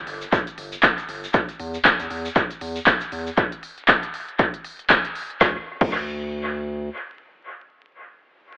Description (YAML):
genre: deep house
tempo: 118 BPM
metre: 4/4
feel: swing 58% on 16ths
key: unclear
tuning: A4 = 440 Hz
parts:
  - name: round analog bass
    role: bass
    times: 0.0-6.9 s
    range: G1 to E2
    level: -30 LUFS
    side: equal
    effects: tube saturation, sidechain pumping
  - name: deep house drum kit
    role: drums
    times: 0.1-5.9 s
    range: crash cymbal, handclaps, hi-hat, snare drum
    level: -21 LUFS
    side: equal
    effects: dub echo
  - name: tube shaker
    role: percussion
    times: 0.2-3.4 s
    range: none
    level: -39 LUFS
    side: equal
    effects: dub echo
  - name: electronic kick drum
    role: drums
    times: 0.3-5.9 s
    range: none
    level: -20 LUFS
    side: equal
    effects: none
room: moderate spring reverb, RT60 1.5 s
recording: echo-heavy mix, vinyl crackle, telephone sound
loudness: -20 LUFS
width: side -21 dB against mid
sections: 0.0-5.4 A section; 5.4-8.6 B section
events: drop 0.0-5.4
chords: none